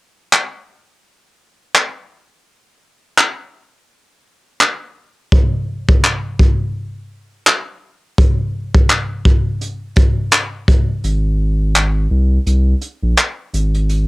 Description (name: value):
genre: contemporary R&B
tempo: 84 BPM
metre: 4/4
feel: swing 58% on 16ths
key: unclear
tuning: A4 = 440 Hz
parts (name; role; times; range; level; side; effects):
- jazz brush drum kit; drums; 0.3-14.1 s; handclaps, hi-hat, kick drum; -13 LUFS; equal; cassette tape
- saturated sub bass; bass; 11.0-14.1 s; Ab1 to C2; -14 LUFS; equal; none
room: little or no reverb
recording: home recording on cassette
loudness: -14 LUFS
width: side -22 dB against mid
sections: 0.0-11.0 A section; 11.0-14.1 B section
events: kick muted 11.0-14.1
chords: none